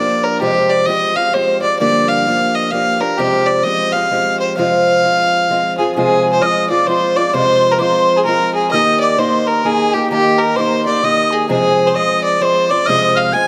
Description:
celtic folk, Celtic waltz; 130 BPM; 3/4; swing 62% on 8ths; F dorian; A4 = 440 Hz
dark fiddle; melody; 0.0-13.5 s; G4 to Ab5; -17 LUFS; equal
fingerpicked acoustic archtop guitar; accompaniment; 0.0-13.5 s; F2 to Ab4; -19 LUFS; equal
mellow hollow wooden whistle; second line; 5.8-13.5 s; G5 to Ab6; -22 LUFS; equal
wet recital hall reverb, RT60 1.5 s; -14 LUFS; mono
0.0-6.0 A section; 6.0-13.5 B section
0.4 Fmadd9; 1.8 Gm7; 3.2 Fmadd9; 4.6 Fm; 8.7 Eb; 11.5 Fm

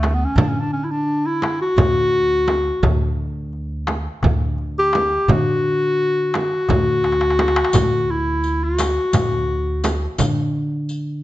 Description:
Turkish makam ensemble; 171 BPM (eighths); 7/8; straight; D makam rast; A4 = 442 Hz
mellow clarinet; melody; 0.0-10.3 s; A3 to G4; -19 LUFS; left 1 dB
upright bass; bass; 0.0-11.2 s; D2 to D3; -23 LUFS; equal
darbuka; percussion; 0.0-11.0 s; -24 LUFS; left 3 dB
frame drum; percussion; 0.0-10.4 s; -22 LUFS; right 3 dB
riq; percussion; 7.7-11.0 s; -30 LUFS; left 3 dB
light reverb; nothing above 7.8 kHz; -17 LUFS; side -15 dB against mid
0.0-11.2 A section
drum fill 7.0-7.7

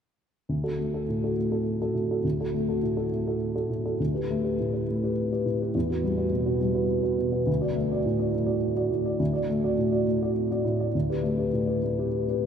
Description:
classical; 103 BPM; 3/4; rubato; D major; A4 = 439 Hz
dark grand piano; accompaniment; 0.5-12.5 s; D2 to D5; -24 LUFS; equal
wet cathedral reverb, RT60 5.7 s; in a vast, echoing space; -24 LUFS; side -7 dB against mid
0.5-12.5 A section
0.5 D (rootless); 4.0 Gadd9/D; 5.7 Emadd9 (rootless); 7.5 D; 10.9 Gadd9/D

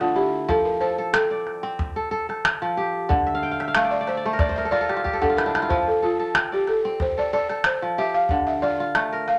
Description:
west african traditional, West African string and xylophone music; 92 BPM; 4/4; straight; F major; A4 = 440 Hz
balafon; melody; 0.0-9.4 s; F4 to F5; -26 LUFS; equal
kora; arpeggios; 0.0-9.4 s; D3 to G5; -27 LUFS; equal
calabash; percussion; 0.5-9.4 s; -27 LUFS; equal
wet club reverb, RT60 0.7 s; -23 LUFS; mono
0.0-9.4 A section
balafon solo 0.0-9.4; kora fill 3.3-5.7; drum fill 5.0-5.7
0.5 F; 3.1 Dm; 5.7 F; 8.3 Dm

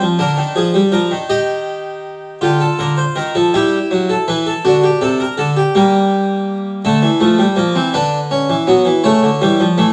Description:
classical, baroque-style 3-part fugue for harpsichord; 54 BPM (dotted quarters); 6/8; straight; A4 = 439 Hz
harpsichord; solo; 0.0-9.9 s; C3 to Eb5; -15 LUFS; equal
moderate stone room reverb, RT60 1.3 s; dark, warm production, vinyl crackle, nothing above 10.6 kHz; -15 LUFS; mono
0.0-2.4 A section; 2.4-9.9 B section
0.2 Bb/D; 1.3 Eb; 2.4 Gm/D; 3.5 A5; 4.6 D; 5.7 Gm; 6.8 Dm; 7.9 E5/D; 9.0 A/C#

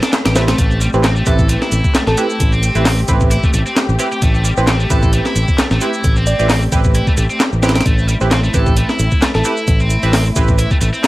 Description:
breakbeat, breaks; 132 BPM; 4/4; swing 55% on 16ths; A minor; A4 = 440 Hz
muted chamber string section; sustained chords; 0.0-11.1 s; A3 to B4; -24 LUFS; left 2 dB; sidechain pumping
scooped high-gain guitar; riff; 0.0-11.0 s; G3 to A4; -22 LUFS; equal; distortion, overdrive, dub echo
band-passed chord stab; stabs; 0.0-11.1 s; C4 to B4; -22 LUFS; right 3 dB; chorus, dub echo
breakbeat sampler-style drum kit; drums; 0.0-11.1 s; hi-hat, kick drum, snare drum; -15 LUFS; equal
electronic shaker and handclaps; drums; 0.0-11.1 s; -24 LUFS; equal
fingered electric bass; bass; 0.3-10.9 s; A1; -16 LUFS; equal
soft struck synth lead; melody; 0.4-9.7 s; A4 to D5; -24 LUFS; right 1 dB; chorus, old record sound, dub echo
light reverb; vinyl crackle; -12 LUFS; side -18 dB against mid
0.0-11.1 A section
0.0 Am7

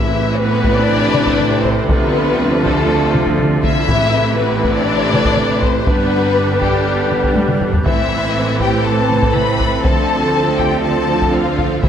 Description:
cinematic, epic orchestral film score; 121 BPM; 4/4; straight; A minor; A4 = 440 Hz
dark symphonic violin section; melody; 0.0-11.9 s; G4 to B5; -20 LUFS; left 6 dB
rich studio violin section; second line; 0.0-11.9 s; G3 to B4; -23 LUFS; left 3 dB
warm symphonic viola section; accompaniment; 0.0-11.9 s; C3 to D4; -21 LUFS; right 1 dB
dark trombone section; sustained chords; 0.0-11.9 s; D3 to A3; -24 LUFS; right 4 dB
mellow French horn section; sustained chords; 0.0-11.9 s; C3 to B4; -24 LUFS; left 2 dB
warm woodwind section; sustained chords; 0.0-11.9 s; A3 to B5; -26 LUFS; equal
warm symphonic cello section; bass; 0.0-11.9 s; G2 to D3; -22 LUFS; right 2 dB
warm symphonic double bass section; bass; 0.0-11.9 s; G1 to D2; -22 LUFS; right 3 dB
timpani; percussion; 0.0-0.6, 3.9-4.6, 11.8-11.9 s; A2; -24 LUFS; equal
taiko ensemble; drums; 0.6-11.9 s; -20 LUFS; equal
moderate concert hall reverb, RT60 2.3 s; -13 LUFS; side -8 dB against mid
0.0-11.9 A section
drum fill 7.4-7.9
0.0 Amadd9; 1.9 Dm7; 3.9 Amadd9; 5.9 G; 7.9 Amadd9; 9.8 Dm7

